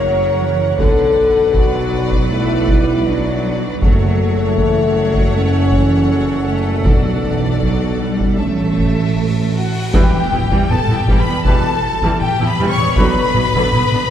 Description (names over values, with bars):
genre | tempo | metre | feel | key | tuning
cinematic, epic orchestral film score | 79 BPM | 4/4 | straight | B minor | A4 = 443 Hz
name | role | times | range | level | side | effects
rich symphonic violin section | melody | 0.0-14.1 s | F#5 to C#6 | -25 LUFS | left 4 dB | none
clear symphonic violin section | second line | 0.0-14.1 s | F#4 to E5 | -26 LUFS | left 4 dB | none
rich symphonic viola section | accompaniment | 0.0-14.0 s | D3 to B4 | -24 LUFS | right 1 dB | none
mellow French horn section | sustained chords | 0.0-13.2 s | A3 to C#5 | -18 LUFS | left 2 dB | none
clear studio cello section | bass | 0.0-14.0 s | E2 to A3 | -24 LUFS | right 2 dB | none
mellow tuba | bass | 0.0-13.8 s | E1 to B1 | -22 LUFS | right 2 dB | none
rich symphonic double bass section | bass | 0.0-13.8 s | E1 to B1 | -21 LUFS | right 2 dB | none
taiko ensemble | drums | 0.8-14.1 s | none | -18 LUFS | equal | none
cymbal swell and impact | sound effects | 8.9-13.0 s | none | -30 LUFS | equal | none
silver concert flute | second line | 9.6-14.1 s | F#5 to C#6 | -24 LUFS | equal | none
warm trombone section | sustained chords | 9.9-13.3 s | B2 to F#3 | -29 LUFS | right 2 dB | none
warm trumpet | stabs | 9.9-13.2 s | B4 | -29 LUFS | equal | none
room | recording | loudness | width
wet concert hall reverb, RT60 2.2 s | heard from further back in the room | -13 LUFS | side -10 dB against mid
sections
0.0-9.9 A section; 9.9-14.1 B section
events
cymbal swell 8.9-9.9; impact 9.9-13.0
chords
0.0 F#; 0.8 Bm7; 3.8 F#m; 6.9 Bm7; 8.4 A; 9.9 Em; 13.0 Bm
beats
0.04 | 0.79 1.55 2.31 3.07 | 3.82 4.58 5.34 6.10 | 6.86 7.62 8.39 9.17 | 9.94 10.70 11.46 12.22 | 12.97 13.73